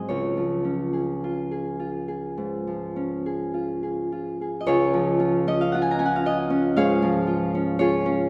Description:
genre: classical, solo harp piece.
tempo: 52-59 BPM.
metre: 4/4.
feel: rubato.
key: Db major.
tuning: A4 = 440 Hz.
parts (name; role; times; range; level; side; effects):
Celtic harp; solo; 0.0-8.3 s; Db2 to Bb5; -24 LUFS; equal; none.
room: wet church reverb, RT60 2.8 s.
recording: heard from further back in the room.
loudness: -24 LUFS.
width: mono.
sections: 0.0-4.7 A section; 4.7-8.3 A section.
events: none.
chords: 0.1 Db.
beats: | 0.10 1.25 2.39 3.54 | 4.66 5.72 6.76 7.78.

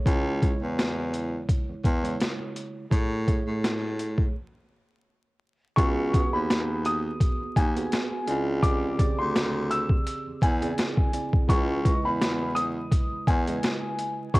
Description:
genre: hip hop, boom-bap hip-hop.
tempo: 84 BPM.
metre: 4/4.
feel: swing 56% on 16ths.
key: C# minor.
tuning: A4 = 441 Hz.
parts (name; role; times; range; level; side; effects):
mellow tine electric piano; accompaniment; 0.0-14.4 s; A2 to D#5; -33 LUFS; right 4 dB; medium stereo tremolo, cassette tape, high-pass filter, low-pass filter.
clear baritone saxophone; bass; 0.1-14.4 s; C#2 to A2; -28 LUFS; equal; tube saturation.
boom bap sampler-style drum kit; drums; 0.1-14.4 s; hi-hat, kick drum, snare drum; -25 LUFS; equal; overdrive.
dark upright piano; melody; 5.8-14.4 s; G#5 to E6; -30 LUFS; left 1 dB; high-pass filter, low-pass filter, tape echo.
room: little or no reverb.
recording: home recording on cassette, vinyl crackle.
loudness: -23 LUFS.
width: side -21 dB against mid.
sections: 0.0-5.8 A section; 5.8-14.4 B section.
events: break 4.3-5.8.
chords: 0.1 C#m; 2.9 Amaj7; 5.8 G#m7/C#; 8.3 E7alt/C#; 11.5 C#m9.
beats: | 0.06 0.78 1.49 2.20 | 2.92 3.63 4.35 5.06 | 5.78 6.49 7.20 7.92 | 8.63 9.35 10.06 10.78 | 11.49 12.20 12.92 13.63 | 14.35.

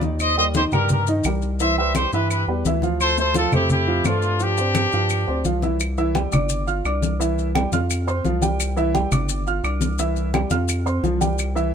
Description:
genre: latin, salsa.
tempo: 172 BPM.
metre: 4/4.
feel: straight.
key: C major.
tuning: A4 = 441 Hz.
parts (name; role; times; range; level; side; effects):
warm upright piano; accompaniment; 0.0-11.7 s; Eb3 to F6; -24 LUFS; right 2 dB; none.
round analog bass; bass; 0.0-11.7 s; G1 to G2; -24 LUFS; equal; none.
congas; percussion; 0.0-11.7 s; none; -25 LUFS; left 2 dB; none.
maracas; percussion; 0.0-11.7 s; none; -31 LUFS; left 9 dB; none.
clear trumpet section; melody; 0.2-5.5 s; D4 to E5; -21 LUFS; equal; none.
claves; percussion; 0.2-11.6 s; none; -31 LUFS; right 2 dB; none.
room: light reverb.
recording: minimal, uncompressed stereo recording.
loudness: -18 LUFS.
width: side -7 dB against mid.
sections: 0.0-5.8 A section; 5.8-11.7 B section.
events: none.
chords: 0.2 Eb6; 1.6 Cmaj7; 3.0 Dm9; 4.4 G7sus4; 5.8 C; 6.5 G5; 7.2 C; 7.9 Fsus2; 8.6 C; 9.3 G5; 10.0 C; 10.7 Fsus2.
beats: | 0.19 0.55 0.90 1.25 | 1.60 1.95 2.30 2.65 | 3.00 3.35 3.70 4.05 | 4.40 4.75 5.10 5.45 | 5.80 6.15 6.50 6.85 | 7.20 7.55 7.90 8.25 | 8.60 8.95 9.30 9.65 | 9.99 10.34 10.69 11.04 | 11.39 11.74.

